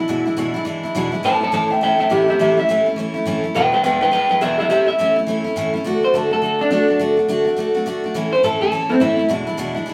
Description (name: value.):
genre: rock.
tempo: 208 BPM.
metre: 4/4.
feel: swing 62% on 8ths.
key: A major.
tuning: A4 = 438 Hz.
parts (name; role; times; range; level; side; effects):
electric guitar through a small old amp; melody; 0.0-9.3 s; C4 to A5; -19 LUFS; equal; vibrato effect.
picked steel-string acoustic guitar; accompaniment; 0.0-9.9 s; E2 to F#4; -22 LUFS; equal; none.
room: moderate large studio reverb, RT60 1.1 s.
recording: band playing live in one room.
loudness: -18 LUFS.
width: mono.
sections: 0.0-5.9 A section; 5.9-9.9 B section.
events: clean electric guitar solo 0.0-5.9.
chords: 0.0 E7; 1.2 A; 3.6 E7; 4.7 A; 5.9 D; 8.2 A; 9.3 E7.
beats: | 0.09 0.38 0.67 0.96 | 1.25 1.53 1.82 2.11 | 2.40 2.69 2.98 3.27 | 3.55 3.84 4.13 4.42 | 4.71 4.99 5.28 5.57 | 5.86 6.14 6.43 6.72 | 7.00 7.29 7.58 7.87 | 8.15 8.44 8.72 9.01 | 9.29 9.58 9.87.